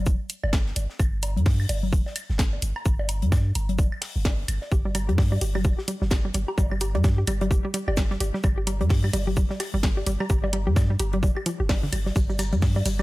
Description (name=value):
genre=minimal techno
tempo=129 BPM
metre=4/4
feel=swing 59% on 16ths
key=unclear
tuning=A4 = 440 Hz
part: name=punchy sub bass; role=bass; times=0.0-13.0 s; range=F1 to G2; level=-25 LUFS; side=equal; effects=sidechain pumping
part: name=deep reggae drum kit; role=drums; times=0.1-13.0 s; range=hi-hat, shaker, snare drum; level=-40 LUFS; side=left 3 dB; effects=sidechain pumping on hats, high-pass filter on hats, high-pass filter on snare, sidechain pumping on perc, high-pass filter on perc, high-pass filter on room
part: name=electronic kick drum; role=drums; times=0.1-12.7 s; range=none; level=-23 LUFS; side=equal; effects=none
part: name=garage drum kit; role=drums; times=0.3-13.0 s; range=hi-hat, snare drum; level=-29 LUFS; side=equal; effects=none
part: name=bongos, woodblock and congas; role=percussion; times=0.4-13.0 s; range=none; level=-33 LUFS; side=left 2 dB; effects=none
part: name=hollow square pluck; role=riff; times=4.7-13.0 s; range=D3 to G4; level=-29 LUFS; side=right 1 dB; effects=chorus, sidechain pumping, ping-pong delay
part: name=maracas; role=percussion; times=12.2-13.0 s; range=none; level=-38 LUFS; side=left 3 dB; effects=none
room=studio reverb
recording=none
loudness=-22 LUFS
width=side -19 dB against mid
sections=0.0-13.0 A section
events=none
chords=none